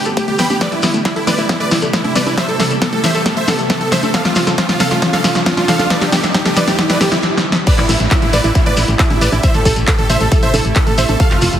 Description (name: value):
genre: uplifting trance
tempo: 136 BPM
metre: 4/4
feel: straight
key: A minor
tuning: A4 = 441 Hz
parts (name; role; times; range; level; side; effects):
- supersaw chords; melody; 0.0-11.5 s; E4 to B5; -19 LUFS; right 1 dB; sidechain pumping, tape echo
- wide unison pluck; second line; 0.0-11.5 s; E4 to B5; -23 LUFS; right 1 dB; sidechain pumping, tape echo
- shimmering ambient pad; sustained chords; 0.0-11.6 s; C3 to A4; -24 LUFS; right 1 dB; chorus, built-in reverb, sidechain pumping
- solid FM bass; bass; 0.0-11.6 s; F1 to A1; -21 LUFS; equal; sidechain pumping, high-pass filter
- riser and downlifter; sound effects; 0.0-11.2 s; none; -24 LUFS; right 1 dB; none
- wide unison pluck; arpeggios; 0.1-7.2 s; E3 to A4; -22 LUFS; left 2 dB; sidechain pumping, tape echo
- punchy analog drum machine; drums; 0.1-11.6 s; congas, crash cymbal, handclaps, hi-hat, snare drum; -17 LUFS; equal; none
- shekere; percussion; 0.1-11.6 s; none; -26 LUFS; left 3 dB; none
- electronic kick drum; drums; 0.2-11.3 s; none; -15 LUFS; equal; high-pass filter on kick
room: moderate recital hall reverb, RT60 1.6 s, digital ambience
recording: heavily compressed radio sound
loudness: -12 LUFS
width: side -10 dB against mid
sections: 0.0-7.7 A section; 7.7-11.6 B section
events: build-up 0.0-7.7; drum fill 0.0-7.2, 7.2-7.7; riser 0.0-7.2; filter sweep on synth arpeggio sound 0.0-7.7; drop 7.7-11.6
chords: 0.0 Gadd9; 0.6 Am7; 4.1 F; 5.9 Gadd9; 7.7 Am7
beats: 0.17 | 0.61 1.05 1.49 1.93 | 2.38 2.82 3.26 3.70 | 4.14 4.58 5.02 5.46 | 5.91 6.35 6.79 7.23 | 7.67 8.11 8.55 8.99 | 9.43 9.88 10.32 10.76 | 11.20